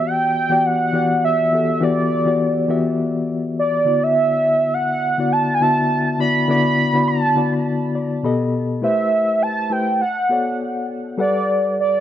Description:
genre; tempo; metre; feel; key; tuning
soul; 102 BPM; 4/4; swing 54% on 16ths; D major; A4 = 435 Hz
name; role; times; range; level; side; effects
warm velvety synth lead; melody; 0.0-12.0 s; D5 to B5; -18 LUFS; right 2 dB; chorus, tape echo
mellow reed electric piano; accompaniment; 0.0-12.0 s; B2 to B5; -20 LUFS; left 3 dB; fast tremolo
room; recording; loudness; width
moderate echo chamber reverb, RT60 1.4 s; none; -16 LUFS; side -11 dB against mid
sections
0.0-8.8 A section; 8.8-12.0 B section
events
reed electric piano fill 7.7-8.8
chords
0.0 Em7; 3.9 D6; 8.2 B7b13; 8.8 Am9; 10.0 Bm9; 11.2 Gmaj7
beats
0.06 0.65 1.23 | 1.82 2.40 2.99 3.57 | 4.15 4.74 5.32 5.91 | 6.49 7.08 7.66 8.25 | 8.84 9.43 10.01 10.60 | 11.19 11.78

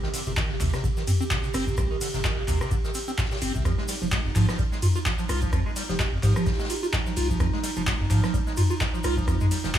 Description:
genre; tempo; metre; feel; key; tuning
acid house; 128 BPM; 4/4; swing 56% on 16ths; unclear; A4 = 441 Hz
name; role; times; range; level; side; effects
warbly tape-like pad; sustained chords; 0.0-9.8 s; Eb4 to G4; -35 LUFS; right 2 dB; chorus, built-in reverb, sidechain pumping
liquid acid bass; riff; 0.0-9.8 s; F2 to F4; -30 LUFS; right 1 dB; phaser, overdrive, sidechain pumping, digital delay
jazz brush drum kit; drums; 0.0-9.8 s; hi-hat, snare drum; -39 LUFS; left 2 dB; sidechain pumping on hats, high-pass filter on hats, high-pass filter on snare, high-pass filter on room
booming analog drum machine; drums; 0.1-9.8 s; handclaps, hi-hat, ride cymbal, rim click, toms; -29 LUFS; left 1 dB; overdrive
tube shaker; percussion; 0.1-9.8 s; none; -41 LUFS; left 2 dB; none
saturated sub bass; bass; 0.3-9.8 s; F1 to Ab2; -27 LUFS; equal; sidechain pumping
electronic kick drum; drums; 0.4-9.8 s; none; -27 LUFS; equal; overdrive
vibraphone with medium mallets; melody; 5.9-6.9 s; G4; -36 LUFS; right 1 dB; digital delay
room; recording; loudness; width
studio ambience; none; -23 LUFS; side -11 dB against mid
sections
0.0-9.8 A section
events
none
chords
0.0 Cm; 3.7 Fm7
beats
0.37 0.84 1.31 | 1.78 2.25 2.71 3.18 | 3.65 4.12 4.59 5.06 | 5.53 6.00 6.46 6.93 | 7.40 7.87 8.34 8.81 | 9.28 9.75

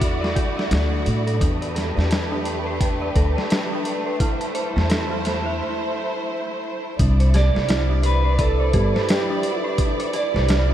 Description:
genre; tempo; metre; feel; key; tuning
trip hop; 86 BPM; 4/4; swing 60% on 16ths; unclear; A4 = 440 Hz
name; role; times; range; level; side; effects
rich studio violin section; sustained chords; 0.0-10.7 s; A3 to D5; -28 LUFS; right 1 dB; none
dark detuned synth bell; arpeggios; 0.0-10.7 s; D4 to A5; -27 LUFS; equal; chorus, analog delay
upright bass; bass; 0.0-10.7 s; G1 to A2; -20 LUFS; equal; none
dusty soul sampler-style drum kit; drums; 0.0-10.7 s; hi-hat, kick drum, snare drum; -24 LUFS; equal; none
electric guitar at the edge of break-up; melody; 7.4-10.7 s; G4 to D5; -24 LUFS; right 3 dB; dub echo
room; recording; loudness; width
moderate huge ambient reverb, RT60 6.4 s; dreamy mix soaked in reverb, vinyl crackle; -19 LUFS; side -11 dB against mid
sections
0.0-7.0 A section; 7.0-10.7 B section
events
break 5.6-7.0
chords
0.0 Dadd9/E; 1.4 Gadd9/E; 4.2 Am/E; 7.0 Cmaj9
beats
0.02 0.71 | 1.41 2.11 2.81 3.50 | 4.20 4.90 5.60 6.30 | 6.99 7.69 8.39 9.09 | 9.78 10.48

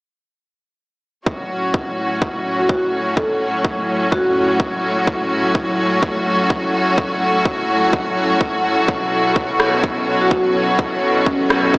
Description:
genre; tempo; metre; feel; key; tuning
bass house; 126 BPM; 4/4; swing 58% on 16ths; F# minor; A4 = 440 Hz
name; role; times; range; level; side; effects
clear symphonic string section; sustained chords; 1.3-11.8 s; A2 to F#4; -18 LUFS; equal; sidechain pumping
electronic kick drum; drums; 1.3-11.8 s; none; -22 LUFS; equal; none
airy breathy pad; texture; 2.0-11.8 s; F#3 to C#5; -22 LUFS; equal; chorus, sidechain pumping
vibraphone with soft mallets; melody; 2.6-4.5, 10.2-11.7 s; C#4 to A4; -20 LUFS; equal; analog delay
electronic rim click; drums; 9.6-11.6 s; none; -19 LUFS; equal; none
room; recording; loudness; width
wet plate reverb, RT60 1.4 s; dreamy mix soaked in reverb, small speaker sound; -15 LUFS; side -33 dB against mid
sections
1.3-11.8 A section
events
none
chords
1.3 F#m; 8.9 Bsus2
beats
| 1.26 1.74 2.22 2.69 | 3.17 3.65 4.12 4.60 | 5.07 5.55 6.03 6.50 | 6.98 7.46 7.93 8.41 | 8.88 9.36 9.84 10.31 | 10.79 11.27 11.74

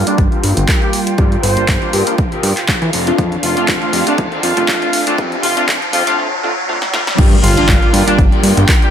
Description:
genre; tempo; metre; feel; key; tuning
filtered disco house; 120 BPM; 4/4; swing 54% on 16ths; G minor; A4 = 439 Hz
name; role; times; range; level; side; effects
mellow horn section; melody; 0.0-8.9 s; D4 to C5; -20 LUFS; equal; sidechain pumping, low-pass filter, dub echo
funky polysynth comp; accompaniment; 0.0-8.9 s; G3 to F4; -19 LUFS; right 1 dB; chorus, phaser, sidechain pumping, low-pass filter
warm studio violin section; sustained chords; 0.0-8.9 s; Bb3 to G5; -25 LUFS; right 2 dB; sidechain pumping, low-pass filter
electric guitar at the edge of break-up; riff; 0.0-8.9 s; D4 to D5; -24 LUFS; left 4 dB; wide subtle chorus, sidechain pumping, low-pass filter
fat analog bass; bass; 0.0-8.7 s; F1 to E3; -17 LUFS; equal; tube saturation, sidechain pumping, low-pass filter
riser and impact; sound effects; 2.1-8.9 s; none; -22 LUFS; equal; none
punchy analog drum machine; drums; 0.1-8.9 s; crash cymbal, handclaps, hi-hat, snare drum; -19 LUFS; equal; overdrive, sidechain pumping on hats, sidechain pumping on cymbals
electronic kick drum; drums; 0.2-8.8 s; none; -14 LUFS; equal; overdrive
room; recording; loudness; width
light reverb, digital ambience; high-pass filter; -11 LUFS; side -9 dB against mid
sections
0.0-7.2 A section; 7.2-8.9 B section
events
build-up 0.0-7.2; filter sweep 0.0-7.2; riser 2.1-7.2; break 6.2-7.2; drum fill 6.8-7.2; drop 7.2-8.9; impact 7.2-8.9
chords
0.0 Gm7; 2.9 F6; 7.2 Gm7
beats
0.19 0.69 | 1.19 1.69 2.19 2.69 | 3.19 3.69 4.19 4.69 | 5.19 5.69 6.19 6.69 | 7.19 7.69 8.19 8.69

